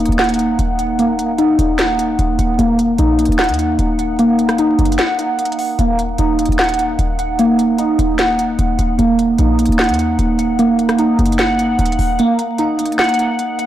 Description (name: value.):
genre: hip hop, trap.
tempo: 150 BPM.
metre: 4/4.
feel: half-time.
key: Eb minor.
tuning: A4 = 439 Hz.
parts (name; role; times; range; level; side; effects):
glassy digital keys; arpeggios; 0.0-13.7 s; Bb3 to Gb5; -14 LUFS; right 1 dB; chorus, low-pass filter, tape echo.
short 808-style bass; bass; 0.0-12.2 s; Eb1 to Eb2; -19 LUFS; equal; none.
trap drum kit; drums; 0.1-13.7 s; hi-hat, rim click, snare drum; -21 LUFS; left 1 dB; none.
room: light reverb.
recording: blown-out, overdriven recording, vinyl crackle, overdrive.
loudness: -13 LUFS.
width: side -12 dB against mid.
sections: 0.0-13.7 A section.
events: filter sweep on synth keys 0.0-12.2; break 5.0-5.8; kick muted 12.2-13.7.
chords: 0.0 Ebm.